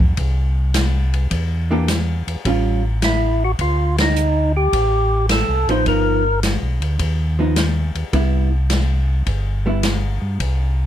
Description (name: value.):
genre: soul jazz organ trio.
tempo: 106 BPM.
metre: 4/4.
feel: swing 69% on 8ths.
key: unclear.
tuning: A4 = 440 Hz.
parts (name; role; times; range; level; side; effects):
mellow tonewheel organ; bass; 0.0-10.9 s; G1 to G2; -18 LUFS; equal; chorus vibrato, slow rotary speaker.
open jazz drum kit; drums; 0.0-10.6 s; hi-hat, kick drum, ride cymbal, snare drum; -23 LUFS; left 1 dB; none.
vintage hollow-body jazz guitar; accompaniment; 1.7-9.8 s; E3 to G4; -20 LUFS; right 2 dB; none.
percussive tonewheel organ; melody; 3.0-6.4 s; Eb4 to C5; -19 LUFS; equal; overdrive, slow rotary speaker.
room: little or no reverb.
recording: close, detailed microphones.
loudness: -16 LUFS.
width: side -11 dB against mid.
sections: 0.0-10.9 A section.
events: band accent 3.9.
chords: 0.0 F5; 1.3 Em7b5; 2.5 A7b13; 3.6 Dm7; 5.9 G7alt; 8.1 Cmaj7.